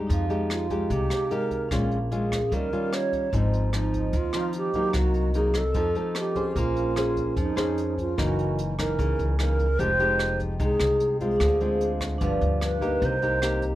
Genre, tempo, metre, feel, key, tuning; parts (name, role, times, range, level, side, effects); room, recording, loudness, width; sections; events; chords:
bossa nova; 148 BPM; 4/4; straight; A4 = 438 Hz
nylon-string guitar; accompaniment; 0.0-13.8 s; Gb2 to C5; -29 LUFS; left 2 dB
vibraphone with soft mallets; accompaniment; 0.1-13.8 s; C4 to Ab5; -34 LUFS; right 3 dB
upright bass; bass; 0.1-13.8 s; F1 to F2; -27 LUFS; equal
jazz brush drum kit; drums; 0.1-13.7 s; hi-hat, kick drum, rim click; -32 LUFS; equal
mellow hollow alto flute; melody; 0.5-13.6 s; Eb4 to Db5; -26 LUFS; right 2 dB
light reverb; -22 LUFS; side -14 dB against mid
0.0-6.6 A section; 6.6-13.8 B section
0.1 Fm9; 1.7 Bbm7; 2.5 Eb9; 3.3 Ab6; 4.9 Cm7b5; 5.8 F7; 6.6 Bbm9; 8.2 Gb13; 9.8 Fm9; 11.4 Dm7b5; 12.2 G7; 13.0 Cm7